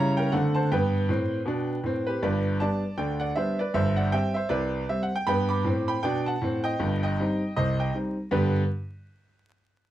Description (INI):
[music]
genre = jazz, stride piano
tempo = 157 BPM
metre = 4/4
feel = swing 59% on 8ths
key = G major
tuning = A4 = 440 Hz
[part]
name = clear grand piano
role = solo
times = 0.0-8.6 s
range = G1 to D6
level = -24 LUFS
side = right 1 dB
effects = none
[sound]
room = moderate club reverb, RT60 0.5 s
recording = close, detailed microphones, vinyl crackle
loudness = -24 LUFS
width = side -13 dB against mid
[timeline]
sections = 0.0-2.2 A section; 2.2-8.3 B section; 8.3-9.9 C section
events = none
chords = 0.3 D7; 0.7 G; 3.7 C/G; 5.3 G; 6.8 Cm/G; 8.3 G